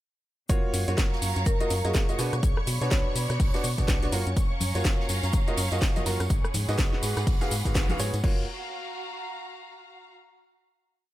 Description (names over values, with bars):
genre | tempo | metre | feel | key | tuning
piano house | 124 BPM | 4/4 | swing 59% on 16ths | F# major | A4 = 440 Hz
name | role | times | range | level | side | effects
analog string pad | sustained chords | 0.5-8.2 s | C#5 to C#6 | -39 LUFS | equal | ensemble chorus, sidechain pumping
bright upright piano | riff | 0.5-8.4 s | G#2 to E#5 | -33 LUFS | right 1 dB | sidechain pumping, digital delay
organ-like FM bass | bass | 0.5-8.5 s | F#1 to B2 | -29 LUFS | equal | sidechain pumping
electronic kick drum | drums | 0.5-8.4 s | none | -26 LUFS | equal | none
house drum kit | drums | 0.5-8.4 s | crash cymbal, hi-hat, rim click, shaker, snare drum | -32 LUFS | equal | none
swinging big-band drum kit | drums | 0.5-8.1 s | hi-hat, shaker, snare drum | -43 LUFS | right 1 dB | none
warm studio string section | texture | 0.5-10.1 s | F#3 to B5 | -36 LUFS | right 2 dB | sidechain pumping
marimba with medium hard mallets | melody | 1.5-3.0 s | G#4 to C#5 | -34 LUFS | equal | digital delay
tambourine and congas | percussion | 4.4-8.2 s | none | -38 LUFS | left 2 dB | none
room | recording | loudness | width
little or no reverb | none | -24 LUFS | side -15 dB against mid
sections
0.5-8.2 drop; 8.2-10.2 final chord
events
drop 0.5-8.2; band accent 7.8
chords
0.5 F#maj7; 2.2 Bmadd9; 4.1 F#maj7; 6.3 G#m7; 8.2 F#maj7